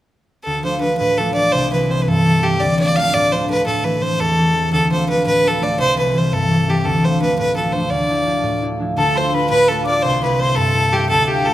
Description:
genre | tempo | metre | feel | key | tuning
celtic folk, Celtic jig | 113 BPM (dotted quarters) | 6/8 | straight | D dorian | A4 = 440 Hz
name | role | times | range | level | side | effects
rich fiddle | melody | 0.4-11.5 s | G4 to F5 | -17 LUFS | equal | none
concert harp | accompaniment | 0.5-11.5 s | C2 to F4 | -18 LUFS | equal | none
reedy wooden whistle | second line | 9.0-11.5 s | G5 to D6 | -22 LUFS | left 5 dB | none
room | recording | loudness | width
moderate recital hall reverb, RT60 1.4 s | none | -14 LUFS | side -13 dB against mid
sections
0.5-9.0 A section; 9.0-11.5 A section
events
none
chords
0.5 Dm; 1.5 C; 2.6 Dm; 3.7 Am; 4.7 Dm; 5.8 C; 6.8 Dm; 7.9 Dmadd9; 10.0 C

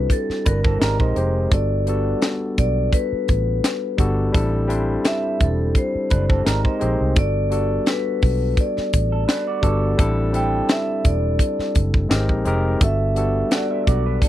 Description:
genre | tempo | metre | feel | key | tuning
lush 1970s-style soul | 85 BPM | 4/4 | swing 54% on 16ths | G major | A4 = 441 Hz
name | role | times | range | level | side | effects
vibraphone with medium mallets | melody | 0.0-14.3 s | A4 to G5 | -25 LUFS | equal | none
barky tine electric piano | accompaniment | 0.0-14.3 s | G3 to C5 | -24 LUFS | left 2 dB | none
vintage muted fingered electric bass | bass | 0.0-14.2 s | E1 to C2 | -22 LUFS | equal | none
tight funk drum kit | drums | 0.1-14.3 s | hi-hat, kick drum, snare drum | -19 LUFS | equal | none
electric guitar through a small old amp | riff | 0.5-1.5, 6.1-14.3 s | C4 to F#5 | -28 LUFS | right 6 dB | spring reverb
room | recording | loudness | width
little or no reverb | dry, close 1970s-style studio recording | -18 LUFS | side -13 dB against mid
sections
0.0-14.3 A section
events
none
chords
0.0 D9sus4; 0.8 Abmaj9; 1.5 Gmaj9; 4.3 D9sus4/A; 6.5 Abmaj9; 7.2 Gmaj9; 10.0 D9sus4/A; 12.1 Abmaj9; 12.8 Gmaj9

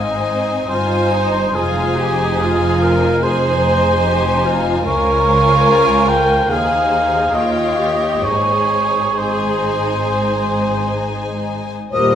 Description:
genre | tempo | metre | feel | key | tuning
classical | 63-75 BPM | 4/4 | rubato | Ab major | A4 = 440 Hz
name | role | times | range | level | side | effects
clear studio violin section | melody | 0.0-12.1 s | Eb5 to Ab5 | -25 LUFS | left 6 dB | none
mellow cor anglais | second line | 0.0-12.2 s | Ab4 to G5 | -18 LUFS | right 2 dB | none
rich studio violin section | second line | 0.0-12.2 s | Eb4 to Eb5 | -23 LUFS | left 3 dB | none
warm studio viola section | accompaniment | 0.0-12.1 s | Bb3 to Bb4 | -21 LUFS | equal | none
rich studio double bass section | bass | 0.0-12.2 s | F1 to Eb2 | -23 LUFS | right 1 dB | none
warm studio cello section | bass | 0.0-12.2 s | Db2 to Ab2 | -24 LUFS | right 2 dB | none
silver concert flute | second line | 11.9-12.2 s | Eb6 | -16 LUFS | left 3 dB | none
warm clarinet | second line | 11.9-12.2 s | G4 | -20 LUFS | equal | none
bright trombone section | sustained chords | 11.9-12.2 s | Bb2 to G3 | -20 LUFS | right 3 dB | none
mellow French horn section | sustained chords | 11.9-12.2 s | C5 | -16 LUFS | left 6 dB | none
room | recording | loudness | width
wet recital hall reverb, RT60 1.4 s | recorded in a church or concert hall | -14 LUFS | side -9 dB against mid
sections
0.0-11.9 A section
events
none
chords
0.0 Ab; 1.5 Fm7; 4.9 Dbmaj7; 6.5 Ab/Eb; 7.3 Eb9; 8.2 Ab

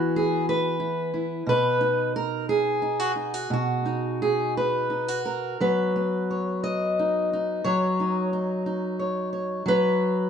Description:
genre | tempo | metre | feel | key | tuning
folk, solo fingerstyle acoustic guitar | 59 BPM (dotted quarters) | 6/8 | rubato | B major | A4 = 440 Hz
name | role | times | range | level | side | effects
fingerpicked steel-string acoustic guitar | solo | 0.0-10.3 s | B2 to D#5 | -23 LUFS | equal | none
room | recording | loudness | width
wet stone room reverb, RT60 1.0 s | band playing live in one room, nothing above 10.7 kHz | -23 LUFS | side -7 dB against mid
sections
0.0-10.3 A section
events
none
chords
0.0 E; 1.5 B; 5.6 F#sus4; 9.7 B5/F#

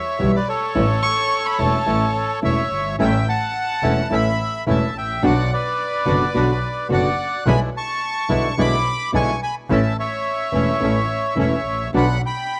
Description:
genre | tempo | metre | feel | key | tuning
tango | 107 BPM | 4/4 | rubato | unclear | A4 = 439 Hz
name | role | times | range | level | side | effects
bandoneon | melody | 0.0-12.6 s | A4 to D6 | -24 LUFS | equal | cassette tape
nylon-string guitar | accompaniment | 0.2-12.0 s | B2 to F#4 | -24 LUFS | equal | cassette tape
bright double bass | bass | 0.2-12.2 s | E1 to B1 | -25 LUFS | equal | none
dark violin | second line | 1.0-2.3 s | A5 to C#6 | -25 LUFS | equal | cassette tape
bandoneon | stabs | 3.0-12.2 s | F#3 to F#4 | -31 LUFS | equal | cassette tape
room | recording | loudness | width
small room ambience | home recording on cassette | -20 LUFS | mono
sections
0.0-12.6 A section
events
none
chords
0.0 Em; 0.8 A; 5.2 Bm; 7.5 E7/B; 9.7 A; 11.9 Bm

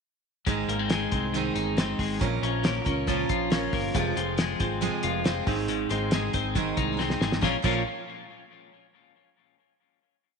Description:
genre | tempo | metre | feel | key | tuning
jangly indie pop | 138 BPM | 4/4 | straight | Bb minor | A4 = 440 Hz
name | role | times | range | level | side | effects
picked steel-string acoustic guitar | accompaniment | 0.5-7.8 s | F2 to Bb4 | -30 LUFS | right 11 dB | none
twelve-string electric guitar | arpeggios | 0.5-7.8 s | Ab2 to F4 | -29 LUFS | left 9 dB | tape echo
fingered electric bass | bass | 0.5-7.8 s | F1 to Db2 | -34 LUFS | equal | none
cloth-damped thuddy drum kit | drums | 0.5-7.7 s | crash cymbal, hi-hat, kick drum, snare drum | -29 LUFS | equal | none
room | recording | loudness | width
moderate echo chamber reverb, RT60 2.1 s | 1960s-style stereo with parts hard left and right, nothing above 10.4 kHz | -24 LUFS | side -5 dB against mid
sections
0.5-7.4 bridge; 7.4-9.2 final chord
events
drum fill 7.0-7.4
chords
0.5 Ab; 2.2 Bbm; 4.0 Fm; 5.5 Ab; 7.4 Bbm

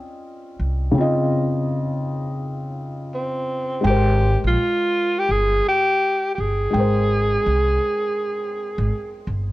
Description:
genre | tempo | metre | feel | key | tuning
hip hop | 83 BPM | 4/4 | swing 64% on 16ths | Ab major | A4 = 439 Hz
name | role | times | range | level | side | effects
felt-muted upright piano | accompaniment | 0.0-9.5 s | Db3 to G5 | -24 LUFS | left 1 dB | cassette tape, low-pass filter
upright bass | bass | 0.6-9.5 s | G1 to C2 | -20 LUFS | equal | none
breathy tenor saxophone | melody | 3.1-9.3 s | C4 to Ab4 | -20 LUFS | equal | low-pass filter
room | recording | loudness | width
light reverb | worn, warbling old tape, cassette tape, warbly pitch drift | -18 LUFS | side -17 dB against mid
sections
0.0-9.5 A section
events
none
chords
0.0 Dbmaj9; 3.8 Abmaj9

